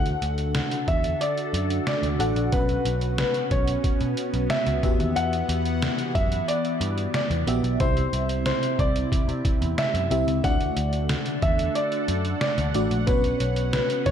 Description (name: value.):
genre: 1980s-style pop.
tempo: 91 BPM.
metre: 4/4.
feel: straight.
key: D major.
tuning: A4 = 438 Hz.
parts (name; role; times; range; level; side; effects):
warm concert grand piano; melody; 0.0-14.1 s; B4 to F#5; -28 LUFS; equal; tape echo.
FM electric piano with soft pad layer; accompaniment; 0.0-14.1 s; B2 to F#5; -30 LUFS; equal; chorus, tremolo.
phased analog pad; sustained chords; 0.5-14.1 s; C3 to F#5; -31 LUFS; equal; phaser, chorus.
vintage muted picked electric bass; bass; 0.0-14.1 s; A1 to C3; -27 LUFS; equal; none.
trip hop sampler-style drum kit; drums; 0.1-14.1 s; hi-hat, kick drum, snare drum; -27 LUFS; equal; gated reverb.
room: light reverb.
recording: none.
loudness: -22 LUFS.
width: side -8 dB against mid.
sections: 0.0-14.1 A section.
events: none.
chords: 0.0 D; 2.5 Bsus2; 4.8 Emadd9; 7.8 C; 10.4 D; 13.1 Bsus2.